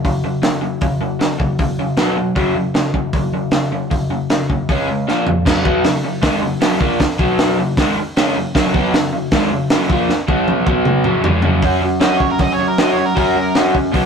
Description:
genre	garage rock duo or trio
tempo	156 BPM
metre	4/4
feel	straight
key	F# major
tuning	A4 = 440 Hz
part	crunchy overdriven guitar	riff	0.0-14.1 s	F#2 to F#4	-17 LUFS	equal	none
part	crunchy breakbeat drum kit	drums	0.0-14.0 s	crash cymbal, hi-hat, kick drum, snare drum, toms	-18 LUFS	equal	none
part	octave-fuzz lead guitar	melody	12.0-13.6 s	A#4 to D#5	-20 LUFS	right 2 dB	distortion
room	moderate studio reverb, RT60 0.6 s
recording	rough rehearsal-room recording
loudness	-14 LUFS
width	side -6 dB against mid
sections	0.0-5.5 A section; 5.5-11.6 B section; 11.6-14.1 C section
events	drum fill 5.1-5.5, 10.1-11.6; lead electric guitar solo 11.6-14.1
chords	0.0 F#5; 2.0 B5; 2.4 F#5; 4.7 C#5; 5.1 A#5; 5.5 F#; 7.2 B5; 7.6 F#; 10.3 B5; 11.1 F#5; 11.6 F#

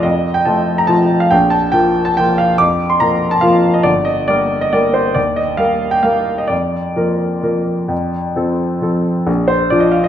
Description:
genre	classical, piano waltz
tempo	125-148 BPM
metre	3/4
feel	rubato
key	Bb major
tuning	A4 = 438 Hz
part	clear grand piano	solo	0.0-10.1 s	G1 to D6	-12 LUFS	equal	none
room	wet recital hall reverb, RT60 1.4 s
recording	minimal, uncompressed stereo recording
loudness	-13 LUFS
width	side -10 dB against mid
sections	0.0-9.3 A section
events	none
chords	0.0 F; 1.3 Bb5; 3.9 Gm; 5.2 Eb; 6.5 Bb/F; 7.9 F; 9.3 Bb

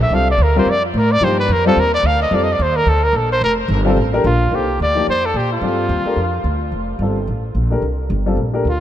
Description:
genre	modal jazz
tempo	218 BPM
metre	4/4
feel	swing 59% on 8ths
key	C dorian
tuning	A4 = 441 Hz
part	breathy trumpet	melody	0.0-6.6, 8.7-8.8 s	F4 to F5	-18 LUFS	equal	ping-pong delay
part	upright bass	bass	0.0-8.8 s	F1 to Bb2	-18 LUFS	equal	none
part	warm baby grand piano	accompaniment	0.1-8.6 s	F3 to C5	-20 LUFS	left 2 dB	none
room	moderate huge ambient reverb, RT60 4.8 s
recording	dreamy mix soaked in reverb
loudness	-14 LUFS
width	side -11 dB against mid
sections	0.0-4.5 A section; 4.5-8.8 B section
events	trumpet solo 0.0-4.5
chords	0.0 C9sus4

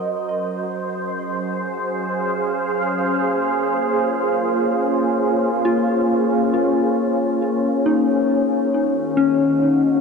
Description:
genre	ambient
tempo	68 BPM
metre	3/4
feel	straight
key	unclear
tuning	A4 = 439 Hz
part	evolving wavetable pad	sustained chords	0.0-10.0 s	Eb3 to F5	-18 LUFS	equal	ensemble chorus, built-in reverb
part	soft synth bell	arpeggios	0.0-10.0 s	Db4 to Eb5	-24 LUFS	left 3 dB	chorus, ping-pong delay
part	analog drone	drone	0.0-3.1 s	Gb3 to Db4	-35 LUFS	right 1 dB	chorus
room	wet huge ambient reverb, RT60 8.7 s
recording	in a vast, echoing space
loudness	-17 LUFS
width	side -5 dB against mid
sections	0.0-3.0 A section; 3.0-10.0 B section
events	none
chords	0.3 Bbm9/Gb; 8.3 Ebm7

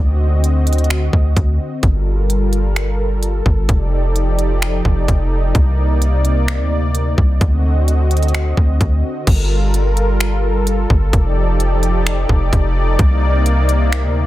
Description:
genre	hip hop, atmospheric cloud-rap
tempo	129 BPM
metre	4/4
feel	half-time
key	G minor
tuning	A4 = 442 Hz
part	warm analog pad	sustained chords	0.0-14.3 s	C3 to Eb5	-20 LUFS	equal	chorus, sidechain pumping
part	warm 808-style bass	bass	0.0-14.3 s	F1 to D2	-15 LUFS	equal	none
part	trap drum kit	drums	0.4-14.0 s	crash cymbal, finger snaps, hi-hat, kick drum	-17 LUFS	equal	soft clipping on snare
room	little or no reverb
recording	dense, heavily limited modern master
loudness	-13 LUFS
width	side -15 dB against mid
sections	0.0-9.3 A section; 9.3-14.3 B section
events	none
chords	0.0 D7b9; 1.8 Gm9; 3.7 F13; 5.6 Cm9; 7.4 D7b9; 9.3 Gm9; 11.1 F13; 13.0 Cm9

